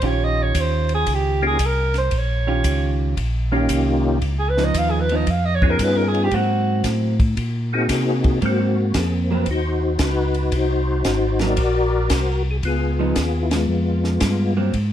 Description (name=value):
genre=soul jazz organ trio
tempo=114 BPM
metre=4/4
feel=swing 67% on 8ths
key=Ab major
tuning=A4 = 441 Hz
part: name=breathy alto saxophone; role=melody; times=0.0-6.9 s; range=Gb4 to F5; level=-22 LUFS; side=right 2 dB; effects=plate reverb
part: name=vintage hollow-body jazz guitar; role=accompaniment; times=0.0-14.7 s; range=Eb3 to G4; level=-25 LUFS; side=right 4 dB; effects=none
part: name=mellow tonewheel organ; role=bass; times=0.0-14.9 s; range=Ab1 to C3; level=-21 LUFS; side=equal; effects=overdrive, chorus vibrato, slow rotary speaker
part: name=compact cocktail drum kit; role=drums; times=0.0-14.9 s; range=hi-hat, kick drum, ride cymbal, snare drum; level=-25 LUFS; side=equal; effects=none
part: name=percussive tonewheel organ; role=melody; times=1.4-14.5 s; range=Ab3 to D5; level=-22 LUFS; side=left 2 dB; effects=slow rotary speaker, chorus vibrato, plate reverb
room=light reverb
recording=dark, warm production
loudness=-17 LUFS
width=side -10 dB against mid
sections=0.0-8.4 A section; 8.4-14.9 B section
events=alto saxophone solo 0.0-8.4; band accent 13.4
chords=0.0 Eb9; 4.2 Db9; 6.3 Ab9; 12.6 Db9